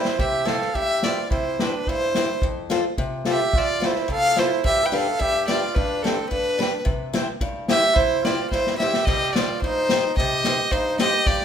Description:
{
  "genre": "alpine folk, alpine dance band",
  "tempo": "108 BPM",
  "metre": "2/4",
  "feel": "straight",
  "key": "C major",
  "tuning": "A4 = 440 Hz",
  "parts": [
    { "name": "rich fiddle", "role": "melody", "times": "0.0-11.4 s", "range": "A4 to G5", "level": "-22 LUFS", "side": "equal", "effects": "none" },
    { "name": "mellow trumpet", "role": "second line", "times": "0.0-11.4 s", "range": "C4 to B4", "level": "-28 LUFS", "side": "right 5 dB", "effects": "none" },
    { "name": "picked steel-string acoustic guitar", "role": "accompaniment", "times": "0.0-11.4 s", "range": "F2 to C5", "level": "-28 LUFS", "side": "left 2 dB", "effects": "none" },
    { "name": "unplugged drum kit", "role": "drums", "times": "0.1-11.4 s", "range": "crash cymbal, hi-hat, kick drum, snare drum", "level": "-25 LUFS", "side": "equal", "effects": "none" }
  ],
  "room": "moderate recital hall reverb, RT60 1.6 s",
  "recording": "minimal, uncompressed stereo recording",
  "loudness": "-19 LUFS",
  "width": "side -8 dB against mid",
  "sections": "0.2-9.1 A section; 9.1-11.4 B section",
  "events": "drum fill 0.0, 8.5-9.1",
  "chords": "0.2 C; 2.4 F; 4.7 G; 6.9 C; 9.1 Cm"
}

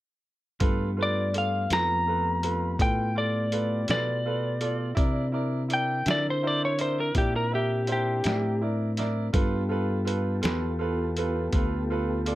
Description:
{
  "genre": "slow blues",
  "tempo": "55 BPM (dotted quarters)",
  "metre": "12/8",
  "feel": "straight",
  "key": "G mixolydian",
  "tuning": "A4 = 439 Hz",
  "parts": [
    { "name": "bright upright piano", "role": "accompaniment", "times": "0.6-12.3 s", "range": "E4 to E5", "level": "-32 LUFS", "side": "right 4 dB", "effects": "none" },
    { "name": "mellow tonewheel organ", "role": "sustained chords", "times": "0.6-12.3 s", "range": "A3 to Bb4", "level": "-35 LUFS", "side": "left 1 dB", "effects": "slow rotary speaker" },
    { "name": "fingered electric bass", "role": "bass", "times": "0.6-12.3 s", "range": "D2 to D3", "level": "-29 LUFS", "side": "equal", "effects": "none" },
    { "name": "lo-fi sampler-style drum kit", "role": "drums", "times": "0.6-12.3 s", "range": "hi-hat, kick drum, snare drum", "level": "-28 LUFS", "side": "equal", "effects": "overdrive" },
    { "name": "lightly driven lead guitar", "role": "melody", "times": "1.0-8.6 s", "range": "G4 to Bb5", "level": "-27 LUFS", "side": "left 1 dB", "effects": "none" }
  ],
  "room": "light reverb",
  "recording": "none",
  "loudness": "-24 LUFS",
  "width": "side -16 dB against mid",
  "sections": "0.6-12.3 A section",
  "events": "none",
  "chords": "0.6 G9; 5.0 C9; 9.3 G9"
}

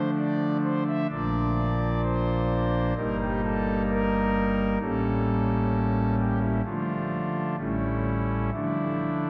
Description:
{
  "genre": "classical, chorale-style piece for pipe organ",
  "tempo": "64 BPM",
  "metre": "4/4",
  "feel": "straight",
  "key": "D minor",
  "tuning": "A4 = 441 Hz",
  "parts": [
    { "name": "pipe organ, foundations", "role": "solo", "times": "0.0-9.3 s", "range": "G1 to E5", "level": "-26 LUFS", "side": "equal", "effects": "none" }
  ],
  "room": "wet church reverb, RT60 3.7 s",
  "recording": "none",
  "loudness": "-26 LUFS",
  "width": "mono",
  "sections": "0.0-9.3 A section",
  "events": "none",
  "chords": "0.0 Dm; 1.1 Bb; 3.0 Eb/G; 4.8 A7b9; 6.7 Dm; 7.6 A7; 8.5 Dm"
}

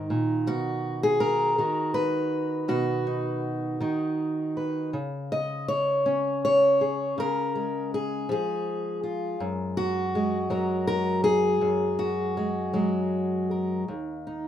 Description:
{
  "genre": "folk, solo fingerstyle acoustic guitar",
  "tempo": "81 BPM",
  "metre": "3/4",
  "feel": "straight",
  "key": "unclear",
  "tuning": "A4 = 440 Hz",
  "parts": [
    { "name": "fingerpicked steel-string acoustic guitar", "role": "solo", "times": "0.0-14.5 s", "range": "Eb2 to Eb5", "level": "-24 LUFS", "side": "equal", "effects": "none" }
  ],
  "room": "wet small room reverb, RT60 0.5 s",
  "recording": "rough home demo mix",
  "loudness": "-24 LUFS",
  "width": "side -10 dB against mid",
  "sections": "0.0-13.9 A section",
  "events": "none",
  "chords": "0.5 B; 4.9 Db; 9.4 Gbadd9; 13.9 N.C."
}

